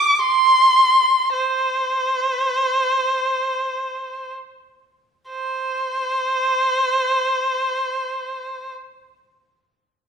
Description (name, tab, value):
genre	chinese traditional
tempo	free time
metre	none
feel	none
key	unclear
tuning	A4 = 440 Hz
part	clear erhu	melody	0.0-8.7 s	C5 to D6	-17 LUFS	equal	none
room	moderate recital hall reverb, RT60 1.4 s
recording	recorded in a church or concert hall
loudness	-17 LUFS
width	side -6 dB against mid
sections	0.0-5.3 A section; 5.3-10.1 B section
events	slowing down 0.0-5.3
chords	none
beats	free time